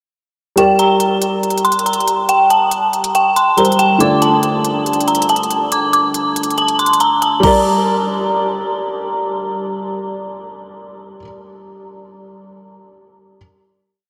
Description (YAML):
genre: hip hop, trap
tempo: 140 BPM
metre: 4/4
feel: half-time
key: G minor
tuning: A4 = 437 Hz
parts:
  - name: dark detuned synth bell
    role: melody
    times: 0.6-8.7 s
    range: G5 to D6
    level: -17 LUFS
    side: equal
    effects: chorus, phaser, low-pass filter, delay
  - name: dark grand piano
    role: accompaniment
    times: 0.6-13.4 s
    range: D3 to D5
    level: -21 LUFS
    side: equal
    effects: low-pass filter
  - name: trap drum kit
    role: drums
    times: 0.6-7.5 s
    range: crash cymbal, hi-hat, kick drum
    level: -25 LUFS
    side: equal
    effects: none
room: wet huge ambient reverb, RT60 8.5 s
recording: dreamy mix soaked in reverb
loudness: -15 LUFS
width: mono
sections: 0.6-7.4 breakdown; 7.4-10.9 final chord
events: kick muted 6.6-7.4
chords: 0.6 Gm; 4.0 Dm; 7.4 Gm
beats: | 0.58 1.00 1.43 1.86 | 2.29 2.72 3.15 3.58 | 4.00 4.43 4.86 5.29 | 5.72 6.15 6.58 7.00 | 7.43 7.86 8.29 8.72 | 9.15 9.58 10.01 10.43